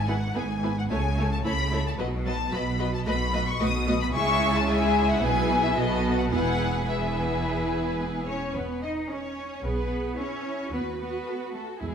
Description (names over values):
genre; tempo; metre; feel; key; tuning
quick classical-period movement for string orchestra; 111 BPM; 4/4; straight; E major; A4 = 440 Hz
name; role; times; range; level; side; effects
clear symphonic violin section; melody; 0.0-11.3 s; G#4 to D#6; -30 LUFS; left 4 dB; none
rich studio cello section; bass; 0.0-11.9 s; E2 to D#4; -31 LUFS; right 1 dB; none
rich symphonic double bass section; bass; 0.0-11.9 s; E1 to E2; -30 LUFS; right 2 dB; none
rich studio violin section; second line; 0.1-11.9 s; G#4 to E5; -31 LUFS; left 3 dB; none
rich studio viola section; accompaniment; 0.1-11.9 s; F#3 to G#4; -30 LUFS; right 2 dB; none
room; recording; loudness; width
wet scoring stage reverb, RT60 1.6 s; none; -24 LUFS; side -7 dB against mid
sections
0.0-8.5 A section; 8.5-11.9 B section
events
none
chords
0.0 E/G#; 0.9 A/C#; 2.0 B; 3.1 B7; 4.1 C#m; 5.2 E/B; 5.8 B7; 6.3 E; 10.7 B7/D#